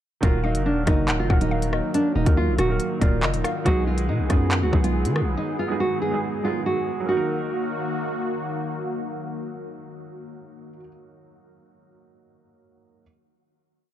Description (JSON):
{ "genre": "hip hop, drill", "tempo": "140 BPM", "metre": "4/4", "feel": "half-time", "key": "Eb minor", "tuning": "A4 = 438 Hz", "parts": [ { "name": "nylon-string guitar", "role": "melody", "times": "0.2-8.3 s", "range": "D4 to G#4", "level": "-26 LUFS", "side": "right 1 dB", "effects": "low-pass filter, tape echo" }, { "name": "felt-muted upright piano", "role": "accompaniment", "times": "0.2-13.0 s", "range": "Eb3 to Bb4", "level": "-30 LUFS", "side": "right 5 dB", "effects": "low-pass filter" }, { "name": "warm analog pad", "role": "sustained chords", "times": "0.2-10.8 s", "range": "Eb3 to G#4", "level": "-30 LUFS", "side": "left 1 dB", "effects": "chorus" }, { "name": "growling 808-style bass", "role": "bass", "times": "0.2-5.4 s", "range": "D1 to D#3", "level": "-24 LUFS", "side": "left 1 dB", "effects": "none" }, { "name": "drill drum kit", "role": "drums", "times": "0.2-5.3 s", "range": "handclaps, hi-hat, kick drum, rim click", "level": "-23 LUFS", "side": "equal", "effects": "vintage 12-bit sampler grit" }, { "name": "mallet-like synth pluck", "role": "second line", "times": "0.4-3.6 s", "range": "D5 to Gb5", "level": "-34 LUFS", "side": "left 5 dB", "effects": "chorus, tape echo" } ], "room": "little or no reverb", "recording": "dark, warm production", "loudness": "-21 LUFS", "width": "side -11 dB against mid", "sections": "0.2-7.1 hook; 7.1-10.5 final chord", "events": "none", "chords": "0.2 Ebm; 3.7 B6; 7.1 Ebm" }